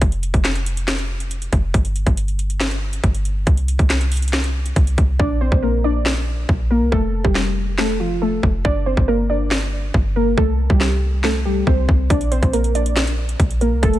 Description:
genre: hip hop, trap.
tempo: 139 BPM.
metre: 4/4.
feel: half-time.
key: Bb major.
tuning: A4 = 440 Hz.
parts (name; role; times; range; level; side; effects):
clean 808-style bass; bass; 0.0-14.0 s; F1 to C2; -20 LUFS; equal; none.
trap drum kit; drums; 0.0-14.0 s; handclaps, hi-hat, kick drum, snare drum; -19 LUFS; equal; overdrive.
warbly dusty pluck; melody; 5.2-14.0 s; F3 to D5; -21 LUFS; equal; chorus.
room: digital ambience.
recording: none.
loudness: -16 LUFS.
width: side -14 dB against mid.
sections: 0.0-14.0 A section.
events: break 0.0-5.2; hi-hats muted 5.2-12.1.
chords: 0.0 N.C.; 5.2 Bb; 6.9 F; 8.6 Gm; 10.4 C5; 12.1 Bb.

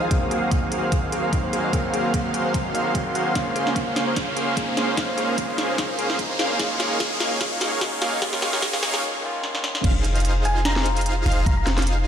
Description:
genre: future bass.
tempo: 148 BPM.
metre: 4/4.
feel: swing 55% on 16ths, half-time.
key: Bb minor.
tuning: A4 = 440 Hz.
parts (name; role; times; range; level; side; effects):
overdriven tine electric piano; accompaniment; 0.0-9.9 s; Db3 to F5; -30 LUFS; equal; vintage 12-bit sampler grit, sidechain pumping, digital delay.
shimmering ambient pad; sustained chords; 0.0-9.0 s; Gb3 to Db6; -34 LUFS; right 2 dB; chorus, built-in reverb, sidechain pumping.
thumb-piano-like synth pluck; arpeggios; 0.0-9.0 s; Ab4 to Ab5; -33 LUFS; left 3 dB; chorus, sidechain pumping, digital delay.
supersaw chords; riff; 0.0-12.1 s; Bb3 to F5; -25 LUFS; right 1 dB; sidechain pumping, low-pass filter, digital delay.
warm 808-style bass; bass; 0.0-12.1 s; F1 to Bb1; -22 LUFS; equal; sidechain pumping, high-pass filter.
riser; sound effects; 0.6-9.0 s; none; -30 LUFS; equal; none.
electronic kick drum; drums; 0.1-11.6 s; none; -25 LUFS; equal; overdrive.
trap drum kit; drums; 0.1-12.0 s; crash cymbal, hi-hat, snare drum; -27 LUFS; equal; none.
wide unison pluck; arpeggios; 9.8-12.1 s; F5; -35 LUFS; right 2 dB; phaser, sidechain pumping, digital delay.
thumb-piano-like synth pluck; melody; 10.5-11.6 s; Ab5 to Bb5; -28 LUFS; left 2 dB; chorus, sidechain pumping, ping-pong delay.
room: light reverb.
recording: played on a big sound system in a bare room, large studio reverb, high-pass filter.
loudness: -20 LUFS.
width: side -9 dB against mid.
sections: 0.0-9.8 A section; 9.8-12.1 B section.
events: build-up 0.0-9.8; filter sweep on supersaw synth 0.0-9.8; filter sweep on synth arpeggio sound 0.0-9.8; filter sweep 0.0-9.8; riser 0.6-9.0; drum fill 3.4-9.0, 9.4-9.8; break 9.0-9.8; drop 9.8-12.1.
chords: 0.1 Ab13; 3.4 Bbm9; 6.6 Eb9sus4; 9.8 Fm7.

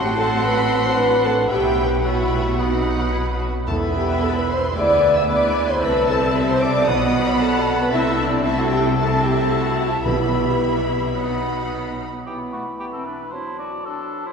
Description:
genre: quick classical-period movement for symphony orchestra.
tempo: 112 BPM.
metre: 4/4.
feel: straight.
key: E minor.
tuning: A4 = 440 Hz.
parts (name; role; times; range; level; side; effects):
rich chamber violin section; melody; 0.0-11.7 s; D5 to E6; -31 LUFS; left 2 dB; none.
clear clarinet; second line; 0.0-14.3 s; A3 to F#4; -29 LUFS; left 1 dB; none.
mellow hollow silver concert flute; second line; 0.0-14.3 s; A5 to B5; -30 LUFS; right 1 dB; none.
rich chamber violin section; second line; 0.0-12.1 s; E5 to C6; -28 LUFS; left 2 dB; none.
warm cor anglais; second line; 0.0-14.3 s; F#4 to F#5; -30 LUFS; left 1 dB; none.
mellow bassoon; accompaniment; 0.0-14.3 s; E3 to A3; -32 LUFS; right 1 dB; none.
warm symphonic viola section; accompaniment; 0.0-12.1 s; B3 to B4; -29 LUFS; right 2 dB; none.
warm French horn section; sustained chords; 0.0-11.7 s; D4 to E5; -21 LUFS; equal; none.
bright chamber cello section; bass; 0.0-12.0 s; D2 to C3; -27 LUFS; right 2 dB; none.
rich chamber double bass section; bass; 0.0-12.0 s; E1 to D2; -26 LUFS; right 1 dB; none.
timpani; percussion; 3.7-10.8 s; E2 to B2; -30 LUFS; right 1 dB; none.
room: wet cathedral reverb, RT60 4.1 s.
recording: recorded in a church or concert hall.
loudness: -17 LUFS.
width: side -6 dB against mid.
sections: 0.0-12.3 A section; 12.3-14.3 A section.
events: none.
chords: 0.0 F#dim/A; 1.5 Bsus4; 2.6 B; 3.7 E5; 4.8 E7/D; 5.8 Am/C; 6.9 B5; 7.9 Am/C; 10.1 Em/B; 11.2 B; 12.3 E5; 13.3 D9/F#.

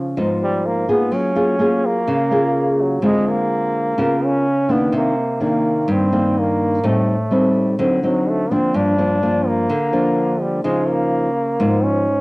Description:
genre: bossa nova.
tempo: 126 BPM.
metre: 4/4.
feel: straight.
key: unclear.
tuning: A4 = 440 Hz.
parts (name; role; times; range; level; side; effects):
bright trombone; melody; 0.0-12.2 s; F3 to D4; -20 LUFS; equal; plate reverb.
nylon-string guitar; accompaniment; 0.0-12.2 s; G2 to Bb4; -17 LUFS; equal; cassette tape.
room: wet studio reverb, RT60 0.6 s.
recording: home recording on cassette.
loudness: -15 LUFS.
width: side -23 dB against mid.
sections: 0.0-12.2 A section.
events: none.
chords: 0.0 Db9; 1.1 Gbmaj9; 3.0 Dm7b5; 4.0 Db13; 4.9 Cm9; 6.8 Am7b5; 7.8 D7b9; 8.7 Gm7; 10.6 Db9.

